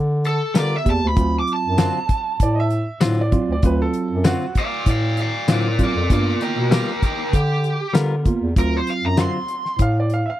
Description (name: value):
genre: straight-eighth soul blues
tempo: 97 BPM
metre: 4/4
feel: swing 55% on 16ths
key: unclear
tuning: A4 = 440 Hz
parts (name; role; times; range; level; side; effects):
- dark bass clarinet; bass; 0.0-10.3 s; D2 to D3; -21 LUFS; equal; none
- damped 70s drum kit; drums; 0.2-10.3 s; hi-hat, kick drum, snare drum, tambourine; -18 LUFS; equal; none
- cranked stack guitar; melody; 0.3-9.8 s; G4 to D6; -23 LUFS; right 1 dB; overdrive
- direct-recorded clean electric guitar; stabs; 0.5-9.4 s; D3 to A#4; -26 LUFS; left 5 dB; spring reverb
- tine electric piano; accompaniment; 0.9-9.4 s; F#3 to G4; -23 LUFS; right 4 dB; none
- bright upright piano; second line; 2.4-4.6, 9.8-10.4 s; F#4 to E#5; -27 LUFS; right 3 dB; none
room: little or no reverb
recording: dry, close 1970s-style studio recording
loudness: -17 LUFS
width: side -14 dB against mid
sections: 0.0-10.4 A section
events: none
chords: 0.0 G7#9; 1.2 D7#9; 6.1 G7#9; 8.6 D7#9